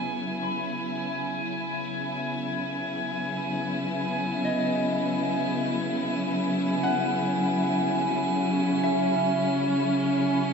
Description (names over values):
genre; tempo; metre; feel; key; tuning
ambient; 75 BPM; 4/4; straight; unclear; A4 = 443 Hz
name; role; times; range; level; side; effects
clear studio string section; sustained chords; 0.0-10.5 s; C#3 to E4; -26 LUFS; equal; none
drifting glass-harmonics texture; texture; 0.0-10.5 s; G#5; -32 LUFS; right 2 dB; chorus, built-in reverb
concert harp; arpeggios; 0.4-10.5 s; D#5 to B5; -33 LUFS; left 1 dB; diffuse ambient delay
room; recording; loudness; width
wet huge ambient reverb, RT60 7.2 s; in a vast, echoing space; -24 LUFS; side -5 dB against mid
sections
0.0-10.5 A section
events
fade-in on string section 0.0-10.5; fade-in on harp 0.0-10.5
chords
0.0 Amaj9 (rootless); 1.6 C#m